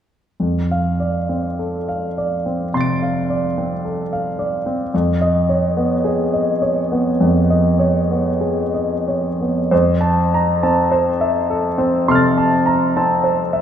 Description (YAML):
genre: classical, impressionist solo piano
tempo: 44-55 BPM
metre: 4/4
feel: rubato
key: F major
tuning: A4 = 440 Hz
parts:
  - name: clear baby grand piano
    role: solo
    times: 0.4-13.6 s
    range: F2 to D7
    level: -16 LUFS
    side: equal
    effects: none
room: wet scoring stage reverb, RT60 1.9 s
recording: minimal, uncompressed stereo recording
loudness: -16 LUFS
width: side -9 dB against mid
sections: 0.4-9.7 A section; 9.7-13.6 B section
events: none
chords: 0.4 F6; 4.9 Db9/F; 9.7 Fmaj7